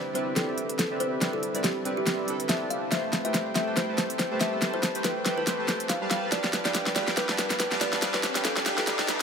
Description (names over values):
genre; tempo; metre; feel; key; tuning
future bass; 141 BPM; 4/4; swing 56% on 16ths, half-time; A minor; A4 = 437 Hz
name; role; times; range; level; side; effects
kalimba; melody; 0.0-8.9 s; G4 to F5; -32 LUFS; left 1 dB; digital delay
glassy digital keys; accompaniment; 0.0-2.9 s; G3 to D5; -36 LUFS; right 4 dB; chorus, digital delay
airy breathy pad; sustained chords; 0.0-9.2 s; D3 to B4; -41 LUFS; left 1 dB; none
soft supersaw; riff; 0.2-9.1 s; G3 to A5; -31 LUFS; right 1 dB; low-pass filter
pop drum kit; drums; 0.2-9.2 s; hi-hat, snare drum; -28 LUFS; equal; none
concert harp; arpeggios; 2.9-9.2 s; G4 to F5; -37 LUFS; right 1 dB; none
riser; sound effects; 5.1-9.2 s; none; -37 LUFS; left 1 dB; none
room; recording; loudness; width
moderate huge ambient reverb, RT60 4.3 s; high-pass filter; -24 LUFS; side -6 dB against mid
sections
0.0-9.2 A section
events
build-up 0.0-9.2; drum fill 0.0-9.2; filter sweep on supersaw synth 0.0-9.2; filter sweep 0.0-9.2; riser 5.1-9.2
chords
0.0 Cmaj9; 2.9 Am7; 6.1 G7